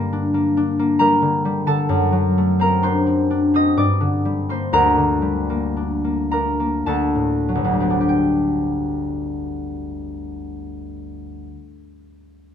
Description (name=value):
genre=classical, solo harp piece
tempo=47-68 BPM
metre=3/4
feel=rubato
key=G minor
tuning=A4 = 441 Hz
part: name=concert harp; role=solo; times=0.0-12.0 s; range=G1 to A6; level=-18 LUFS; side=left 1 dB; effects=none
room=light reverb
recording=close, detailed microphones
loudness=-17 LUFS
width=side -8 dB against mid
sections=0.0-8.1 A section; 8.1-11.7 B section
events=slowing down 0.6-8.1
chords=0.0 Gm; 1.9 D7/F#; 3.7 Gm; 4.7 Gm/D; 6.9 D7; 8.1 G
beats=0.12 1.00 | 1.90 2.82 3.75 | 4.71 5.74 6.86 | 8.09 9.26 10.45